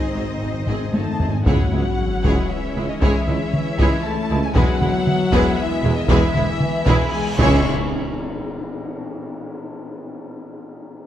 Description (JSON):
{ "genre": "cinematic, epic orchestral film score", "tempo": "116 BPM", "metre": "3/4", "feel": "straight", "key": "C# minor", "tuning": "A4 = 441 Hz", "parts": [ { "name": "warm symphonic violin section", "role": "melody", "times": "0.0-7.7 s", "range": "D#5 to C#6", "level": "-28 LUFS", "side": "left 2 dB", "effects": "none" }, { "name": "rich symphonic violin section", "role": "second line", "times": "0.0-7.7 s", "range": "B3 to D#5", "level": "-29 LUFS", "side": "left 3 dB", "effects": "none" }, { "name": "clear symphonic viola section", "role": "accompaniment", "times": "0.0-7.7 s", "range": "G#3 to G#4", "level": "-28 LUFS", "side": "right 1 dB", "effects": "none" }, { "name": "clear trombone section", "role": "sustained chords", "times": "0.0-7.6 s", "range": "D#3 to G#3", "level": "-34 LUFS", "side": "right 1 dB", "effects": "none" }, { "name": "dark French horn section", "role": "sustained chords", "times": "0.0-7.6 s", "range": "D#3 to D#4", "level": "-26 LUFS", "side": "left 3 dB", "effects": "none" }, { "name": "rich symphonic string section", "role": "sustained chords", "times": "0.0-7.7 s", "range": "B3 to E5", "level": "-30 LUFS", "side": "left 2 dB", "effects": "none" }, { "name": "timpani", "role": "percussion", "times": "0.0-1.4, 7.4-7.6 s", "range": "G#2 to C#3", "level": "-28 LUFS", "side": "left 1 dB", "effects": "none" }, { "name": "mellow tuba", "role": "bass", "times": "0.1-7.6 s", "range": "E1 to C#2", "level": "-27 LUFS", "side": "right 3 dB", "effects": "none" }, { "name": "rich symphonic cello section", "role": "bass", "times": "0.1-7.7 s", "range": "C#2 to G#2", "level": "-27 LUFS", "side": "right 2 dB", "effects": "none" }, { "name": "clear symphonic double bass section", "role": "bass", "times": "0.2-7.7 s", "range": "E1 to C#2", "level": "-26 LUFS", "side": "right 2 dB", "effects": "none" }, { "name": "solo taiko drums", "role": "drums", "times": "0.7-8.4 s", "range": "none", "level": "-22 LUFS", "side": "equal", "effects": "none" }, { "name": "sub drop, reverse cymbal and impact", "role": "sound effects", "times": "1.6-3.0, 7.1-8.9 s", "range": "none", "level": "-30 LUFS", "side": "equal", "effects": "none" }, { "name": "cymbal swell and tam-tam", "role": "percussion", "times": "4.5-9.4 s", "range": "none", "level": "-29 LUFS", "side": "left 2 dB", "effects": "none" } ], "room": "moderate scoring stage reverb, RT60 1.8 s", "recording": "dark, warm production", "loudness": "-17 LUFS", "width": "side -11 dB against mid", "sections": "0.0-1.5 A section; 1.5-7.7 B section; 7.7-9.2 C section", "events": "timpani fill 0.0-1.5; drum fill 0.7-1.5; impact 1.5-3.0, 7.7-9.2; band accent 7.7-8.2", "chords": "0.0 G#; 1.5 C#m; 4.6 E; 7.4 C#m; 7.7 N.C." }